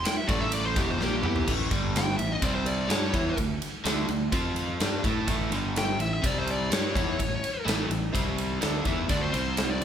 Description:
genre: blues rock power trio and southern rock.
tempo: 126 BPM.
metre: 4/4.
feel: straight.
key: unclear.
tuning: A4 = 438 Hz.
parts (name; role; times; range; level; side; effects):
smooth overdriven lead guitar; melody; 0.0-9.8 s; G4 to G5; -31 LUFS; left 2 dB; none.
fuzz fingered electric bass; bass; 0.0-9.8 s; E1 to A2; -33 LUFS; equal; overdrive.
big rock drum kit; drums; 0.1-9.8 s; crash cymbal, kick drum, ride cymbal, snare drum, toms; -29 LUFS; equal; none.
overdriven electric guitar; riff; 0.3-9.8 s; E2 to A4; -29 LUFS; right 1 dB; spring reverb.
room: moderate large studio reverb, RT60 1.1 s.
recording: band playing live in one room.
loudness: -24 LUFS.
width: side -9 dB against mid.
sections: 0.0-1.5 A section; 1.5-9.8 B section.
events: lead electric guitar solo 0.0-1.5; drum fill 1.0-1.5.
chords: 0.3 A5; 0.8 E5; 1.5 A5; 1.7 G5; 2.2 A5; 2.4 C5; 2.9 Em6; 3.4 D5; 4.3 F5; 4.8 D5; 5.3 A5; 5.5 G5; 6.0 A5; 6.2 C5; 6.7 A7; 8.1 C5; 8.6 A5; 9.1 D5; 9.3 C5.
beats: 0.07 0.54 1.01 | 1.49 1.96 2.43 2.91 | 3.38 3.86 4.33 4.81 | 5.28 5.76 6.23 6.71 | 7.19 7.67 8.14 8.62 | 9.10 9.58.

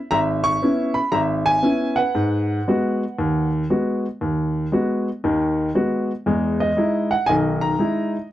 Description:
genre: jazz.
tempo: 117 BPM.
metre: 4/4.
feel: swing 66% on 8ths.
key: G# minor.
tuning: A4 = 440 Hz.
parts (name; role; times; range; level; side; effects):
warm baby grand piano; solo; 0.0-8.3 s; G#1 to C#6; -18 LUFS; equal; none.
room: moderate booth ambience, RT60 0.2 s.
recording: dry, close 1970s-style studio recording.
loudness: -18 LUFS.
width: side -13 dB against mid.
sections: 0.0-8.3 A section.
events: none.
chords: 0.0 C#m7; 2.1 G#m7; 6.3 Emaj7.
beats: | 0.09 0.60 1.12 1.63 | 2.14 2.66 3.17 3.68 | 4.20 4.71 5.22 5.74 | 6.25 6.77 7.28 7.80.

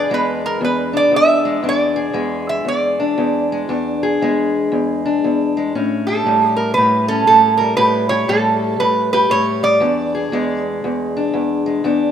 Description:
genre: acoustic country blues, solo or duo.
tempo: 117 BPM.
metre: 4/4.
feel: swing 64% on 8ths.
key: E mixolydian.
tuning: A4 = 440 Hz.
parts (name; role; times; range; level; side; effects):
lap resonator guitar; melody; 0.0-10.6 s; A4 to E5; -15 LUFS; right 2 dB; none.
fingerpicked steel-string acoustic guitar; accompaniment; 0.0-12.1 s; E2 to G#4; -18 LUFS; left 2 dB; none.
room: wet plate reverb, RT60 3.2 s.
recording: rough home demo mix.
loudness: -14 LUFS.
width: side -8 dB against mid.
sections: 0.0-12.1 A section.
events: none.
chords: 0.0 E7; 5.7 A7; 9.8 E7.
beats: 0.10 0.61 1.12 | 1.64 2.15 2.66 3.17 | 3.69 4.20 4.71 5.22 | 5.73 6.24 6.75 7.27 | 7.78 8.29 8.80 9.31 | 9.82 10.33 10.84 11.35 | 11.86.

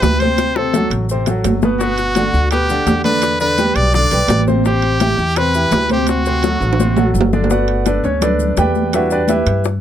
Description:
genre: latin, salsa.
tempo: 168 BPM.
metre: 4/4.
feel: straight.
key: G major.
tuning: A4 = 440 Hz.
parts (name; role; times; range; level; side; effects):
brilliant trumpet; melody; 0.0-7.1 s; F#4 to D5; -17 LUFS; equal; none.
bright upright piano; accompaniment; 0.0-9.6 s; B2 to G5; -19 LUFS; left 1 dB; none.
upright bass; bass; 0.0-9.8 s; G1 to G2; -19 LUFS; equal; none.
bongos; percussion; 0.0-9.8 s; none; -22 LUFS; left 7 dB; none.
congas; percussion; 0.0-9.8 s; none; -22 LUFS; right 1 dB; none.
maracas; percussion; 0.0-9.8 s; none; -34 LUFS; left 6 dB; none.
timbales; percussion; 0.0-9.6 s; none; -22 LUFS; right 6 dB; none.
room: little or no reverb.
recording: close, detailed microphones.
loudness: -13 LUFS.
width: side -10 dB against mid.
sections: 0.0-7.5 A section; 7.5-9.8 B section.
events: drum fill 0.4-1.8, 6.4-7.5; upright piano solo 7.5-9.8.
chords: 0.4 D7; 1.8 Gmaj7; 3.2 Em7; 4.7 Am9; 6.1 D7; 7.5 Gmaj9; 8.9 Em7.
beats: 0.03 | 0.38 0.74 1.09 1.45 | 1.81 2.16 2.52 2.87 | 3.23 3.58 3.94 4.30 | 4.65 5.01 5.37 5.72 | 6.08 6.44 6.79 7.15 | 7.51 7.86 8.22 8.58 | 8.93 9.29 9.65.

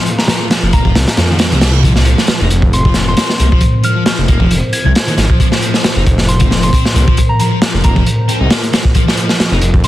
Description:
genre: breakbeat, breaks.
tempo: 135 BPM.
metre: 4/4.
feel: swing 55% on 16ths.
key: F minor.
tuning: A4 = 440 Hz.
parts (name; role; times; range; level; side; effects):
warbly tape-like pad; sustained chords; 0.0-9.9 s; F3 to F5; -25 LUFS; equal; chorus, built-in reverb, sidechain pumping.
sludgy distorted guitar; riff; 0.0-9.6 s; Eb3 to Eb4; -19 LUFS; equal; overdrive, tube saturation, digital delay.
crunchy breakbeat drum kit; drums; 0.1-9.9 s; hi-hat, kick drum, snare drum; -12 LUFS; equal; none.
soft synth bell; melody; 0.2-9.9 s; Bb5 to Ab6; -22 LUFS; left 1 dB; chorus, phaser, telephone sound, digital delay.
detuned saw bass; bass; 0.6-9.9 s; F1 to F2; -13 LUFS; equal; none.
reverse cymbal; sound effects; 1.4-1.8 s; none; -26 LUFS; right 8 dB; none.
room: studio reverb.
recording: dense, heavily limited modern master, vinyl crackle.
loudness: -9 LUFS.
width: side -14 dB against mid.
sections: 0.0-9.9 A section.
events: reverse cymbal 1.4-1.8.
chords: 0.0 Fm.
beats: | 0.06 0.51 0.95 1.40 | 1.84 2.28 2.73 3.17 | 3.62 4.06 4.51 4.95 | 5.39 5.84 6.28 6.73 | 7.17 7.62 8.06 8.51 | 8.95 9.39 9.84.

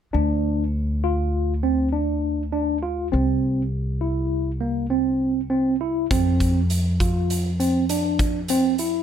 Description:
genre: progressive instrumental, band music in an uneven meter.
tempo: 101 BPM.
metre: 5/4.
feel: straight.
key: D minor.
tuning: A4 = 442 Hz.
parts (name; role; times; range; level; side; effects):
tine electric piano; arpeggios; 0.1-9.0 s; Bb3 to F4; -22 LUFS; right 1 dB; slow stereo tremolo.
upright bass; bass; 0.1-9.0 s; C2 to F2; -24 LUFS; equal; none.
big rock drum kit; drums; 6.1-8.9 s; hi-hat, kick drum; -26 LUFS; equal; none.
room: little or no reverb.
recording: none.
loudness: -20 LUFS.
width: side -9 dB against mid.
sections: 0.1-9.0 A section.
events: none.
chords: 0.1 Dm; 3.1 C; 6.1 F5.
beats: | 0.14 0.73 1.33 1.93 2.52 | 3.12 3.72 4.31 4.91 5.51 | 6.10 6.70 7.30 7.89 8.49.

